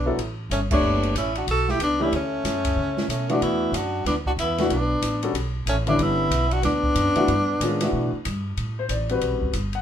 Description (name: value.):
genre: modal jazz.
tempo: 186 BPM.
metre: 4/4.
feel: swing 62% on 8ths.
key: unclear.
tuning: A4 = 442 Hz.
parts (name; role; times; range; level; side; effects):
warm tenor saxophone; melody; 0.0-8.2 s; C#4 to A4; -24 LUFS; left 1 dB; none.
bright trombone; second line; 0.0-8.2 s; A3 to F#4; -31 LUFS; right 2 dB; none.
upright bass; bass; 0.0-9.8 s; F#1 to C#3; -27 LUFS; right 1 dB; none.
warm concert grand piano; accompaniment; 0.1-9.8 s; D3 to F#5; -24 LUFS; left 2 dB; none.
open jazz drum kit; drums; 0.2-9.8 s; crash cymbal, hi-hat, kick drum, ride cymbal, snare drum; -30 LUFS; equal; none.
room: moderate studio reverb, RT60 0.5 s.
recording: band playing live in one room.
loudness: -21 LUFS.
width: side -9 dB against mid.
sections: 0.0-8.6 A section; 8.6-9.8 B section.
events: band accent 0.7.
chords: 0.0 Bm9; 3.4 Em11; 8.6 Am11.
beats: 0.18 0.51 | 0.83 1.15 1.47 1.80 | 2.12 2.44 2.77 3.09 | 3.41 3.73 4.06 4.38 | 4.70 5.02 5.35 5.67 | 5.99 6.31 6.63 6.96 | 7.28 7.60 7.92 8.25 | 8.57 8.89 9.21 9.54.